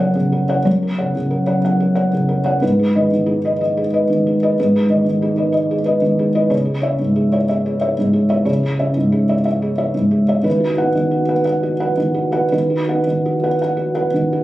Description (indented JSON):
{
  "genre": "neoclassical minimalist piano",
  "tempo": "61 BPM (dotted quarters)",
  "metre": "6/8",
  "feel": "rubato",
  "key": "B major",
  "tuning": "A4 = 439 Hz",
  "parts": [
    { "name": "felt-muted upright piano", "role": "solo", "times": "0.0-14.4 s", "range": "F#2 to F#5", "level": "-15 LUFS", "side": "equal", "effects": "none" }
  ],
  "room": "light reverb",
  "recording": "recorded on a phone in the room, club reverb, compression",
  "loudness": "-15 LUFS",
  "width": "side -16 dB against mid",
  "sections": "0.0-14.4 A section",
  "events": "none",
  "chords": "0.0 F#; 2.6 G#m; 6.5 C#m; 10.5 B/D#",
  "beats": "| 0.66 1.64 | 2.62 3.60 | 4.58 5.55 | 6.52 7.49 | 8.48 9.47 | 10.46 11.46 | 12.53 13.60"
}